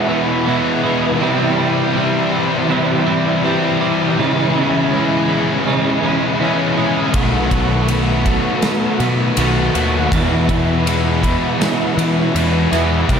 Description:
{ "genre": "rock, shoegaze and dream pop", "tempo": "81 BPM", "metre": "4/4", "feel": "straight", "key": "E major", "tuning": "A4 = 439 Hz", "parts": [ { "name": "twelve-string electric guitar", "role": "arpeggios", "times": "0.0-13.2 s", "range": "E3 to G#4", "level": "-24 LUFS", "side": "right 6 dB", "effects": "analog chorus, tape echo" }, { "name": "crunchy overdriven guitar", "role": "riff", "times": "0.0-13.2 s", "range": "E2 to F#4", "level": "-18 LUFS", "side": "left 5 dB", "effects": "ensemble chorus" }, { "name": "overdriven semi-hollow guitar", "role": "riff", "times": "0.0-13.2 s", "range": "E2 to F#4", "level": "-21 LUFS", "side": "right 6 dB", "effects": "reverse reverb" }, { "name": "tight distorted guitar", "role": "riff", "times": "0.0-13.2 s", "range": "E2 to C#4", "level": "-22 LUFS", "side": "equal", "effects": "distortion" }, { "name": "growling picked electric bass", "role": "bass", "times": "7.1-13.2 s", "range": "B1 to E3", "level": "-19 LUFS", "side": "equal", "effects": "overdrive" }, { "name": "loose indie drum kit", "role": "drums", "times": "7.1-13.2 s", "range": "kick drum, ride cymbal, snare drum", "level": "-22 LUFS", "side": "equal", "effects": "none" } ], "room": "wet lush hall reverb, RT60 2.9 s", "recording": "dreamy mix soaked in reverb", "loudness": "-14 LUFS", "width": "side -7 dB against mid", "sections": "0.0-13.2 A section", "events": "none", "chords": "0.0 E6; 1.2 C; 4.2 C#m7; 7.2 B7; 10.1 E6" }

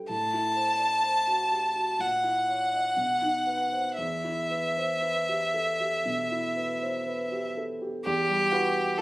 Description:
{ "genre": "classical, romantic duo for violin and grand piano", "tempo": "56-65 BPM", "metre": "4/4", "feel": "rubato", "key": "unclear", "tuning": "A4 = 440 Hz", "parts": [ { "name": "warm concert grand piano", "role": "accompaniment", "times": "0.0-9.0 s", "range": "E2 to F#5", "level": "-33 LUFS", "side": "right 1 dB", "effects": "none" }, { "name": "clear violin", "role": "melody", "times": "0.1-9.0 s", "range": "G4 to A5", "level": "-25 LUFS", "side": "equal", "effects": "none" } ], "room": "light reverb", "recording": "recorded on a phone in the room, studio ambience, compression", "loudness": "-25 LUFS", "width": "side -20 dB against mid", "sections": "0.0-8.0 A section", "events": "none", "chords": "0.1 F#m7b5/A; 2.0 F#7/A#; 3.0 B; 4.0 Em" }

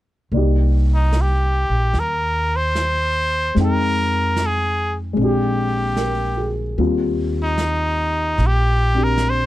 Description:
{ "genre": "jazz ballad", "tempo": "74 BPM", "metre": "4/4", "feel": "swing 69% on 8ths", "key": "C minor", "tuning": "A4 = 441 Hz", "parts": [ { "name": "dark baby grand piano", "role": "accompaniment", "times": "0.3-9.5 s", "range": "G3 to G5", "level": "-23 LUFS", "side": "left 2 dB", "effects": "none" }, { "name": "upright bass", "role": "bass", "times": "0.3-9.5 s", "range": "Bb1 to F2", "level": "-20 LUFS", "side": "equal", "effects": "none" }, { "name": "vintage brush drum kit", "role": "drums", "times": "0.3-9.5 s", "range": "brushed snare drum, hi-hat, snare drum", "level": "-33 LUFS", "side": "right 3 dB", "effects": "none" }, { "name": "trumpet with straight mute", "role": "melody", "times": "0.9-9.5 s", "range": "Eb4 to C5", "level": "-21 LUFS", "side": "equal", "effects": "none" } ], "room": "little or no reverb", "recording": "dark, warm production", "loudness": "-17 LUFS", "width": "side -15 dB against mid", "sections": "0.3-9.5 A section", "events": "none", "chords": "0.3 Cm7; 3.6 Fm9; 5.2 Bb13; 6.8 Eb6" }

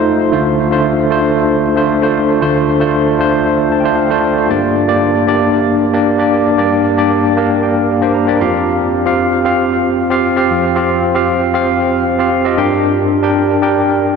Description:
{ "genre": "pop", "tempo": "115 BPM", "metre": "4/4", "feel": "straight", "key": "unclear", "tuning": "A4 = 440 Hz", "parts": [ { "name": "tine electric piano", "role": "solo", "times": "0.0-14.2 s", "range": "D2 to Bb5", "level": "-11 LUFS", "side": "equal", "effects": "medium stereo tremolo, diffuse ambient delay" } ], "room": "wet cathedral reverb, RT60 5.5 s", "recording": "dreamy mix soaked in reverb", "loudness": "-11 LUFS", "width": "side -5 dB against mid", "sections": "0.3-14.2 A section", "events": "tine electric piano fill 3.5-4.5, 7.1-8.7", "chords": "0.3 Dm7; 4.5 Gm; 8.4 Fsus2; 12.6 Gm" }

